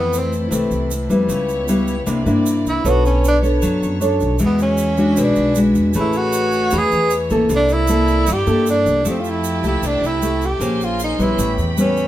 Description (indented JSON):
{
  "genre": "bossa nova",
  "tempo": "155 BPM",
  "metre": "4/4",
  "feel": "straight",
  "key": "F major from 9.1 s",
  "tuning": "A4 = 439 Hz",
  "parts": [
    { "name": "breathy tenor saxophone", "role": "melody", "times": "0.0-0.4, 2.7-12.1 s", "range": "B3 to G#4", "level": "-19 LUFS", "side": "right 1 dB", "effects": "none" },
    { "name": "nylon-string guitar", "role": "accompaniment", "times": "0.0-12.1 s", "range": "F2 to C#5", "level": "-18 LUFS", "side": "left 1 dB", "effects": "none" },
    { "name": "warm studio string section", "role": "sustained chords", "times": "0.0-12.1 s", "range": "A3 to C6", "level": "-29 LUFS", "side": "equal", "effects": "none" },
    { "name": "upright bass", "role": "bass", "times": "0.0-12.1 s", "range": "A1 to G2", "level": "-22 LUFS", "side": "equal", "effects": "none" },
    { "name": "egg shaker", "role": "percussion", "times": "0.1-12.1 s", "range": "none", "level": "-32 LUFS", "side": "right 5 dB", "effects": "none" }
  ],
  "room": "moderate studio reverb, RT60 0.6 s",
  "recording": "band playing live in one room",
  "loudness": "-15 LUFS",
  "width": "side -13 dB against mid",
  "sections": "0.0-9.1 A section; 9.1-12.1 B section",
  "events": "tenor saxophone solo 0.0-9.1",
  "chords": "0.0 Fmaj7; 1.3 C#m7b5; 2.1 C9; 2.8 Bm9; 4.4 E9; 6.0 Amaj9; 7.5 C13; 9.1 Fmaj9; 10.6 Bbm9; 11.4 A9",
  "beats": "0.13 0.52 0.91 | 1.29 1.68 2.07 2.46 | 2.85 3.23 3.62 4.01 | 4.40 4.79 5.17 5.56 | 5.95 6.34 6.73 7.11 | 7.50 7.89 8.28 8.67 | 9.06 9.45 9.83 10.22 | 10.61 11.00 11.39 11.78"
}